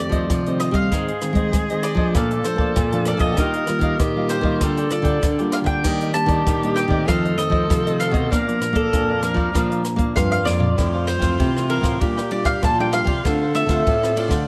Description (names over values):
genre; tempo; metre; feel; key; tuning
samba and choro; 97 BPM; 4/4; straight; Bb major, F major from 10.8 s; A4 = 440 Hz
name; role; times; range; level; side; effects
mandolin; melody; 0.0-14.5 s; A4 to A5; -28 LUFS; equal; none
bright clarinet; second line; 0.0-14.5 s; F4 to Bb4; -28 LUFS; equal; none
nylon-string guitar; accompaniment; 0.0-14.5 s; F2 to F4; -28 LUFS; equal; none
cavaquinho; accompaniment; 0.1-14.5 s; D4 to A5; -32 LUFS; equal; none
nylon-string guitar; bass; 0.1-14.4 s; F2 to Bb3; -26 LUFS; equal; none
compact cocktail drum kit; drums; 0.1-14.5 s; hi-hat, kick drum, ride cymbal, rim click, snare drum, toms; -26 LUFS; equal; none
room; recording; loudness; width
light reverb; close, detailed microphones, lossy compression artefacts; -20 LUFS; mono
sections
0.0-10.8 A section; 10.8-14.5 B section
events
drum fill 10.5-10.8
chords
0.0 F7; 0.9 Ab; 2.2 Bbmaj7; 3.4 Ebadd9; 4.6 Gm7/D; 5.9 Ebmaj7; 7.1 F7; 8.3 Bb; 10.8 Fmaj7; 12.0 Bb6; 13.3 Dm7